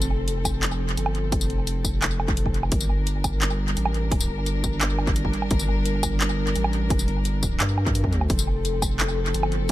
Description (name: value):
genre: half-time drum and bass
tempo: 172 BPM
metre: 4/4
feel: half-time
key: G minor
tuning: A4 = 440 Hz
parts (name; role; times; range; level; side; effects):
- dark chamber string section; sustained chords; 0.0-9.7 s; F3 to Bb4; -30 LUFS; left 1 dB; sidechain pumping
- saturated sub bass; bass; 0.0-9.7 s; F1 to G2; -25 LUFS; equal; none
- drum and bass drum kit; drums; 0.0-9.7 s; handclaps, hi-hat, tambourine, woodblock; -28 LUFS; right 1 dB; tape echo
- electronic kick drum; drums; 0.4-9.7 s; none; -26 LUFS; equal; none
room: digital ambience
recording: echo-heavy mix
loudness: -21 LUFS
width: side -15 dB against mid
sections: 0.0-9.7 A section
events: none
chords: 0.0 F; 2.7 Gm; 8.3 F